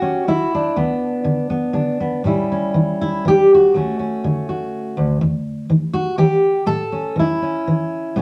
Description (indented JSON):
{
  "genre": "folk, solo fingerstyle acoustic guitar",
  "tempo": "122 BPM",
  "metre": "3/4",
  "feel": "rubato",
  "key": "unclear",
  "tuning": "A4 = 440 Hz",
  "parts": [
    { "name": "fingerpicked steel-string acoustic guitar", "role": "solo", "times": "0.0-8.2 s", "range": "D2 to A4", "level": "-18 LUFS", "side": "equal", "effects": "none" }
  ],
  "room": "moderate studio reverb, RT60 0.8 s",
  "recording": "none",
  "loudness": "-18 LUFS",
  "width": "mono",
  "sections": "0.0-2.3 A section; 2.3-8.2 B section",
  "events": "none",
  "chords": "0.0 A (rootless); 0.8 Bm/D; 2.3 A7; 3.7 Dmaj7; 5.2 N.C.; 6.7 A"
}